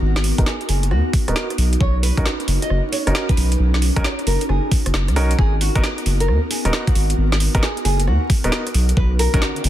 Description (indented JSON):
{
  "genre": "UK garage, two-step garage",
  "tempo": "134 BPM",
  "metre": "4/4",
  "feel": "swing 65% on 16ths",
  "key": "G# minor",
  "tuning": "A4 = 440 Hz",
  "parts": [
    { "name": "ethereal airy pad", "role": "sustained chords", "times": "0.0-9.7 s", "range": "B3 to A#4", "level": "-28 LUFS", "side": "equal", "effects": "ensemble chorus, built-in reverb, sidechain pumping" },
    { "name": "soft dub sub bass", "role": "bass", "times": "0.0-9.7 s", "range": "D#1 to D#2", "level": "-18 LUFS", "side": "equal", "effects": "none" },
    { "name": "garage drum kit", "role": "drums", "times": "0.2-9.7 s", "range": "hi-hat, rim click, snare drum", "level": "-25 LUFS", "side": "right 1 dB", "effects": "overdrive" },
    { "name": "clear concert grand piano", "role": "stabs", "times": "0.4-9.4 s", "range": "B3 to A#4", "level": "-27 LUFS", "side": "right 1 dB", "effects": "low-pass filter, digital delay" },
    { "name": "electronic kick drum", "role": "drums", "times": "0.4-9.4 s", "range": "none", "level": "-18 LUFS", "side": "equal", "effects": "overdrive" },
    { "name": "nylon-string guitar", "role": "melody", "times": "0.5-9.4 s", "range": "F#4 to D#5", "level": "-27 LUFS", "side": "equal", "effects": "digital delay" },
    { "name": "riser", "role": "sound effects", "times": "9.5-9.7 s", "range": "none", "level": "-34 LUFS", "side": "equal", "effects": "none" }
  ],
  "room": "digital ambience",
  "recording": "dense, heavily limited modern master, vinyl crackle",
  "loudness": "-16 LUFS",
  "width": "side -12 dB against mid",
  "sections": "0.0-9.7 A section",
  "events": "filter sweep on grand piano 0.0-9.7; riser 9.5",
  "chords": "0.0 G#m9; 1.6 Bmaj9; 5.4 G#m9; 8.7 Bmaj9"
}